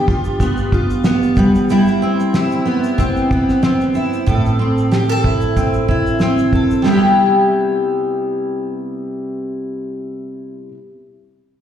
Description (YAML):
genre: acoustic pop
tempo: 93 BPM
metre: 4/4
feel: swing 55% on 16ths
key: C major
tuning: A4 = 444 Hz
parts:
  - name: picked steel-string acoustic guitar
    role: accompaniment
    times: 0.0-10.8 s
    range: G2 to A4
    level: -15 LUFS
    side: equal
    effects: double-tracked left and right, slapback echo
  - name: cloth-damped thuddy drum kit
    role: drums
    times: 0.1-7.0 s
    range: kick drum, shaker, snare drum, splash cymbal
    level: -19 LUFS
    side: equal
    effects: none
room: light reverb, studio ambience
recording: live gig heard through the venue's PA, recital hall reverb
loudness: -14 LUFS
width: side -9 dB against mid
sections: 0.0-6.9 A section; 6.9-9.5 B section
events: none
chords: 0.0 G7; 1.4 Cmaj7/G; 4.3 Am; 6.9 Cmaj7